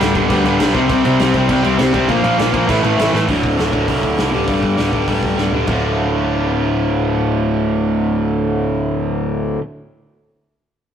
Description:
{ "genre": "punk rock", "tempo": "200 BPM", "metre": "4/4", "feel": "straight", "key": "D minor", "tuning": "A4 = 437 Hz", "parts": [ { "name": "distorted electric guitar", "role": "riff", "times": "0.0-9.6 s", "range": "D2 to C4", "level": "-18 LUFS", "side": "left 5 dB", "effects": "distortion" }, { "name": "high-gain distorted guitar", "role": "riff", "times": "0.0-3.3 s", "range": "G2 to C4", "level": "-19 LUFS", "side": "right 1 dB", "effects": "distortion" }, { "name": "overdriven electric guitar", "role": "riff", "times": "0.0-9.6 s", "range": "D2 to F4", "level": "-19 LUFS", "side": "right 6 dB", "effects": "none" }, { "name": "fuzz picked electric bass", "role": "bass", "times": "0.0-9.6 s", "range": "D1 to D2", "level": "-23 LUFS", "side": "equal", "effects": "overdrive" }, { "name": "loose indie drum kit", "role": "drums", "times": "0.0-5.8 s", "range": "crash cymbal, hi-hat, kick drum, snare drum, toms", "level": "-23 LUFS", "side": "equal", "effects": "none" } ], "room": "light reverb", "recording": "rough rehearsal-room recording, warm saturation", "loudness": "-14 LUFS", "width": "side -9 dB against mid", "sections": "0.0-3.3 A section; 3.3-5.7 B section; 5.7-8.1 C section", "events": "drum fill 3.1, 5.4-5.7", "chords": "0.0 G/D; 0.7 C5; 2.1 Bb5; 2.7 A5; 3.3 D5; 4.3 G5/D; 5.7 Dm", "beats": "0.01 0.30 0.60 | 0.90 1.20 1.49 1.79 | 2.09 2.39 2.68 2.98 | 3.28 3.58 3.88 4.18 | 4.48 4.78 5.08 5.38 | 5.68 5.99 6.29 6.59 | 6.89 7.19 7.49 7.79" }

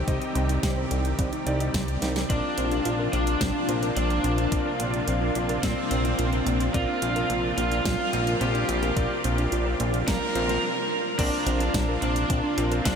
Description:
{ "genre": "synthwave", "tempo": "108 BPM", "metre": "4/4", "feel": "straight", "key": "Bb major", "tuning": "A4 = 440 Hz", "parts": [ { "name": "lush unison pad", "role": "sustained chords", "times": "0.0-13.0 s", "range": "C3 to G4", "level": "-30 LUFS", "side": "equal", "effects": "chorus, vintage 12-bit sampler grit, sidechain pumping" }, { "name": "thumb-piano-like synth pluck", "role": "arpeggios", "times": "0.0-12.9 s", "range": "G3 to Eb5", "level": "-33 LUFS", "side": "right 2 dB", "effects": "chorus, vintage 12-bit sampler grit, diffuse ambient delay" }, { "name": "warm electric grand piano", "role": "stabs", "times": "0.0-13.0 s", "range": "C4 to Eb5", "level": "-34 LUFS", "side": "left 1 dB", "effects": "diffuse ambient delay" }, { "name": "chorused synth bass", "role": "bass", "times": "0.0-13.0 s", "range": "Bb1 to C2", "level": "-28 LUFS", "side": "equal", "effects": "none" }, { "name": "electronic kick drum", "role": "drums", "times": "0.1-13.0 s", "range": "none", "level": "-29 LUFS", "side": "equal", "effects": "overdrive, small room ambience" }, { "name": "pop drum kit", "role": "drums", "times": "0.1-13.0 s", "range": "crash cymbal, hi-hat, snare drum", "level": "-33 LUFS", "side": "equal", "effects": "small room ambience" }, { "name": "lead guitar through a small cranked amp", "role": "melody", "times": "2.3-13.0 s", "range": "C4 to Bb4", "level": "-28 LUFS", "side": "equal", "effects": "overdrive, tape echo" } ], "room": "wet huge ambient reverb, RT60 8.3 s", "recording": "dreamy mix soaked in reverb", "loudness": "-23 LUFS", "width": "side -7 dB against mid", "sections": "0.0-2.3 A section; 2.3-11.2 B section; 11.2-13.0 C section", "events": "drum fill 2.0; stop 10.6-11.2", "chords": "0.0 Cm; 2.3 Bbadd9", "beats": "| 0.08 0.63 1.19 1.74 | 2.30 2.85 3.41 3.97 | 4.52 5.08 5.63 6.19 | 6.74 7.30 7.86 8.41 | 8.97 9.52 10.08 10.63 | 11.19 11.74 12.30 12.86" }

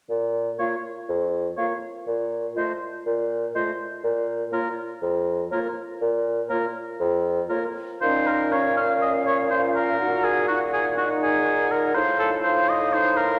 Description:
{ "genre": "quick classical-period movement for wind quintet", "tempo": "122 BPM", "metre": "4/4", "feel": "rubato", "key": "Bb minor", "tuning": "A4 = 437 Hz", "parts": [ { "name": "mellow bassoon", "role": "bass", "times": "0.1-13.4 s", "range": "F2 to Bb2", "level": "-28 LUFS", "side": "equal", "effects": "none" }, { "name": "silver concert flute", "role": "melody", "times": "0.6-13.4 s", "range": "Db5 to Gb5", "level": "-32 LUFS", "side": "equal", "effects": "none" }, { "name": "warm oboe", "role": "second line", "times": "0.6-13.4 s", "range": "Gb4 to F5", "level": "-27 LUFS", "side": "equal", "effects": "none" }, { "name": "clear French horn", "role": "accompaniment", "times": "0.6-13.4 s", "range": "A3 to Gb4", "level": "-34 LUFS", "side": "equal", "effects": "none" }, { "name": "warm clarinet", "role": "accompaniment", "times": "0.6-13.4 s", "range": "Db4 to F4", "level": "-35 LUFS", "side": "equal", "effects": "none" } ], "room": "wet scoring stage reverb, RT60 2.0 s", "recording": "none", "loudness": "-24 LUFS", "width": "mono", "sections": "0.1-8.0 A section; 8.0-13.4 B section", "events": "none", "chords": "0.1 Bb5; 2.1 F/Bb; 4.0 Bb5; 8.0 Bbm; 10.0 Gbmaj13/Bb; 12.0 F7/A", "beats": "| 0.08 0.58 1.08 1.57 | 2.07 2.56 3.06 3.55 | 4.03 4.52 5.02 5.51 | 6.01 6.50 7.00 7.50 | 8.02 8.52 9.02 9.51 | 10.00 10.49 10.98 11.47 | 11.96 12.45 12.94" }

